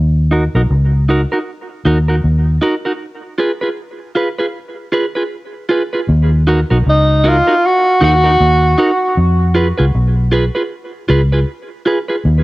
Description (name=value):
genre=dub reggae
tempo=78 BPM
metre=4/4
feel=swing 60% on 16ths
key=Eb minor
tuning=A4 = 438 Hz
part: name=vintage muted fingered electric bass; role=bass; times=0.0-12.4 s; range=Cb2 to F2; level=-12 LUFS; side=equal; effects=transformer saturation
part: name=clean electric guitar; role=accompaniment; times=0.3-12.2 s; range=Eb4 to Cb5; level=-17 LUFS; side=right 2 dB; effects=low-pass filter, dub echo, plate reverb
part: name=warm tenor saxophone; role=melody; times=6.9-9.1 s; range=Eb4 to Gb4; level=-12 LUFS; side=equal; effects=cassette tape, dub echo, plate reverb
room=moderate studio reverb, RT60 0.6 s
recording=home recording on cassette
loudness=-12 LUFS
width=side -19 dB against mid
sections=0.0-6.1 A section; 6.1-12.4 B section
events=break 3.0-6.1, 9.2-12.4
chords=0.0 Ebm; 3.0 Fdim; 6.1 Ebm; 9.2 Fdim